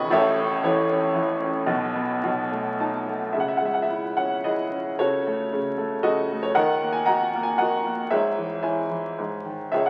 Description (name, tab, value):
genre	classical, lyrical solo piano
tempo	106-120 BPM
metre	3/4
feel	rubato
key	C# minor from 3.3 s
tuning	A4 = 440 Hz
part	clear upright piano	solo	0.0-9.9 s	E1 to D#6	-24 LUFS	equal	none
room	wet scoring stage reverb, RT60 1.7 s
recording	very old 78 rpm record, vinyl crackle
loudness	-24 LUFS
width	mono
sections	0.0-3.3 A section; 3.3-9.9 B section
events	upright piano fill 2.5-3.3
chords	0.1 A; 1.7 E5/B; 2.2 B7; 3.3 C#m; 5.0 F#m/C#; 6.6 D#m; 8.1 C#m/G#; 9.2 G#5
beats	| 0.12 0.63 1.15 | 1.68 2.23 2.79 | 3.35 3.90 4.45 | 4.99 5.51 6.04 | 6.55 7.07 7.59 | 8.10 8.63 9.18 | 9.73